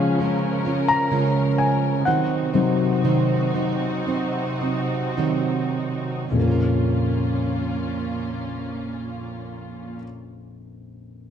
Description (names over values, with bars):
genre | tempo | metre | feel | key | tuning
pop ballad | 49-67 BPM | 4/4 | straight | Bb minor | A4 = 440 Hz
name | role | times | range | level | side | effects
warm concert grand piano | accompaniment | 0.0-11.3 s | Bb1 to Bb5 | -24 LUFS | left 4 dB | none
warm studio string section | sustained chords | 0.0-10.0 s | Bb2 to Bb4 | -28 LUFS | left 1 dB | none
fingerpicked plugged-in steel-string acoustic guitar | arpeggios | 0.0-10.2 s | Bb2 to Db5 | -24 LUFS | right 6 dB | none
room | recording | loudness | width
wet recital hall reverb, RT60 1.7 s, small room reverb | dark, warm production | -20 LUFS | side -8 dB against mid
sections
0.0-6.4 A section; 6.4-11.2 B section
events
slowing down 0.0-6.4; grand piano solo 0.0-6.4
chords
0.0 Db; 2.1 Cdim; 6.4 Bbm